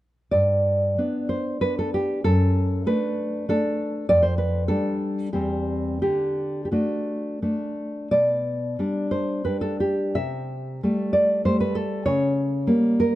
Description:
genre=romantic piece for solo classical guitar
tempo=80-100 BPM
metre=3/4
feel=rubato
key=G major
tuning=A4 = 441 Hz
part: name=nylon-string guitar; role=solo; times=0.3-13.2 s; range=E2 to E5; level=-21 LUFS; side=equal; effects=none
room=light reverb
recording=close, detailed microphones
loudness=-21 LUFS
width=side -15 dB against mid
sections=0.3-13.2 A section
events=none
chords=0.3 G; 2.2 D/F#; 4.1 G5/F; 5.3 C/E; 6.0 D; 8.1 G/B; 10.2 Am7/C; 12.1 Gdim/Db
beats=| 0.31 0.97 1.62 | 2.25 2.86 3.47 | 4.08 4.69 5.32 | 6.01 6.72 7.41 | 8.11 8.77 9.44 | 10.16 10.82 11.45 | 12.05 12.67

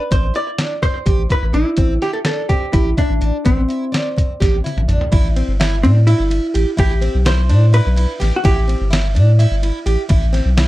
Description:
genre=progressive instrumental, band music in an uneven meter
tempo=252 BPM (eighths)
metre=7/8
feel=straight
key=A minor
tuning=A4 = 441 Hz
part: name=hollow-body jazz guitar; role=melody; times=0.0-8.9 s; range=C4 to D5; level=-20 LUFS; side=equal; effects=slapback echo
part: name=picked plugged-in twelve-string acoustic guitar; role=arpeggios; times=0.0-10.7 s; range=C4 to G4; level=-24 LUFS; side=right 3 dB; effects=none
part: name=soft dub sub bass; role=bass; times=0.1-10.7 s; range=G1 to A2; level=-14 LUFS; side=equal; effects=none
part: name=trip hop sampler-style drum kit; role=drums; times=0.1-10.7 s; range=hi-hat, kick drum, ride cymbal, snare drum, toms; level=-19 LUFS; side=equal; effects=none
room=little or no reverb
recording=dry, close 1970s-style studio recording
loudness=-13 LUFS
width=side -16 dB against mid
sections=0.0-5.1 A section; 5.1-10.7 B section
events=drum fill 4.4-5.1; hollow-body jazz guitar solo 5.1-10.7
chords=0.0 Am; 5.1 A7(no3); 6.8 Cmaj7/A; 8.5 A7(no3); 10.1 Cmaj7/A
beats=| 0.12 0.35 0.59 0.83 1.07 1.31 1.55 | 1.79 2.03 2.27 2.50 2.74 2.98 3.22 | 3.46 3.70 3.94 4.17 4.41 4.65 4.89 | 5.13 5.37 5.60 5.84 6.08 6.32 6.55 | 6.79 7.03 7.27 7.50 7.74 7.98 8.22 | 8.46 8.69 8.93 9.17 9.40 9.64 9.88 | 10.12 10.35 10.59

